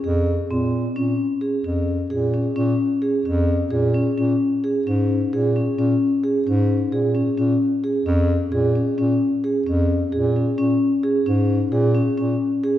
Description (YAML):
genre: contemporary instrumental, chamber music in an uneven meter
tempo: 262 BPM (eighths)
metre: 7/8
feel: straight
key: Bb minor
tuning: A4 = 437 Hz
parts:
  - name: vibraphone with soft mallets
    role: arpeggios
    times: 0.0-12.8 s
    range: C4 to Ab4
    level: -20 LUFS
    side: equal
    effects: none
  - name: dark bass clarinet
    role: bass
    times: 0.0-12.4 s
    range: F2 to Bb2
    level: -22 LUFS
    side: equal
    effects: none
room: wet scoring stage reverb, RT60 1.6 s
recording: heard from further back in the room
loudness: -18 LUFS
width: side -12 dB against mid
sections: 1.0-12.8 A section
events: none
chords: 0.0 Bb7sus2; 1.0 Bbm7; 4.2 Db5; 7.4 Bbm7; 10.6 Db5